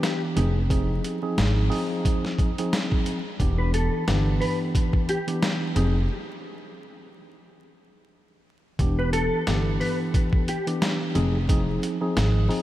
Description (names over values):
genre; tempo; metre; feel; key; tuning
hip hop, boom-bap hip-hop; 89 BPM; 4/4; swing 56% on 16ths; unclear; A4 = 443 Hz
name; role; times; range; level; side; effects
mellow tine electric piano; accompaniment; 0.0-12.6 s; E3 to Ab4; -27 LUFS; equal; slow stereo tremolo, cassette tape, high-pass filter, low-pass filter
boom bap sampler-style drum kit; drums; 0.0-12.6 s; hi-hat, kick drum, snare drum; -26 LUFS; equal; none
upright bass; bass; 0.4-12.5 s; E1 to Ab1; -23 LUFS; equal; none
mellow electric guitar; melody; 3.6-10.7 s; G4 to B4; -31 LUFS; left 1 dB; ensemble chorus, high-pass filter, low-pass filter, ping-pong delay
room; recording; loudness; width
light reverb, digital ambience; vinyl crackle; -22 LUFS; side -14 dB against mid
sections
0.0-12.6 A section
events
break 6.1-8.8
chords
0.4 Fm7; 3.4 Em7; 5.8 Fm7; 8.8 Em7; 11.2 Fm7